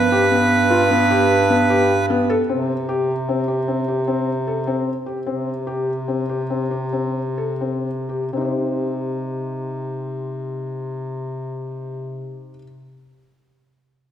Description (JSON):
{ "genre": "contemporary instrumental, chamber music in an uneven meter", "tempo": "120-152 BPM", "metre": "7/4", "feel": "straight", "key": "unclear", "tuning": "A4 = 440 Hz", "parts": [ { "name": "accordion", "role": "melody", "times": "0.0-2.1 s", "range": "B4", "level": "-19 LUFS", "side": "right 3 dB", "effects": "none" }, { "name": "clear bass clarinet", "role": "bass", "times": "0.0-12.5 s", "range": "G2 to C3", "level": "-23 LUFS", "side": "equal", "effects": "none" }, { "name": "felt-muted upright piano", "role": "arpeggios", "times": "0.1-12.6 s", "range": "B3 to C5", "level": "-22 LUFS", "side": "left 2 dB", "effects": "none" } ], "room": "wet concert hall reverb, RT60 2.0 s", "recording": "none", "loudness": "-18 LUFS", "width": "side -10 dB against mid", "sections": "0.0-2.5 A section; 2.5-8.3 B section; 8.3-11.8 C section", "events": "slowing down 4.9-8.3", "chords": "0.0 G; 2.5 C5; 8.3 Cm" }